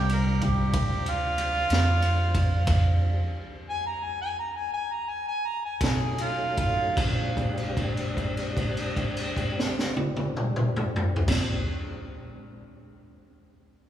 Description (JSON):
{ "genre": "slow blues", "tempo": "50-62 BPM (dotted quarters)", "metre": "12/8", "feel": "straight", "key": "Bb mixolydian", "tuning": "A4 = 440 Hz", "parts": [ { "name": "mellow harmonica", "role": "melody", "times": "0.0-7.0 s", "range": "F4 to Bb5", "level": "-29 LUFS", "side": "right 1 dB", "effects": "overdrive" }, { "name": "tonewheel organ", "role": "sustained chords", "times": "0.0-11.6 s", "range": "F#3 to G4", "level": "-35 LUFS", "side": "left 2 dB", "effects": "slow rotary speaker, chorus vibrato" }, { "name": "upright bass", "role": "bass", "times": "0.0-11.6 s", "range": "Bb1 to B2", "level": "-28 LUFS", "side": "equal", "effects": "none" }, { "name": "raw garage drum kit", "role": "drums", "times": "0.1-11.5 s", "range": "crash cymbal, kick drum, ride cymbal, snare drum, toms", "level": "-27 LUFS", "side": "equal", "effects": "none" } ], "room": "wet cathedral reverb, RT60 4.1 s", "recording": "recorded in a church or concert hall, small room ambience", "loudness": "-24 LUFS", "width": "side -11 dB against mid", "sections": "0.0-7.0 A section; 7.0-11.8 B section", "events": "harmonica solo 0.0-7.0; slowing down 1.4-7.0; stop 2.7-5.8; held note 7.0-11.3", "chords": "0.0 Bb9 (rootless); 2.7 Fm69; 5.8 B9; 7.0 Bb13", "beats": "0.74 1.71 | 2.68 3.68 4.72 5.81 | 6.97 8.17 9.36 10.56" }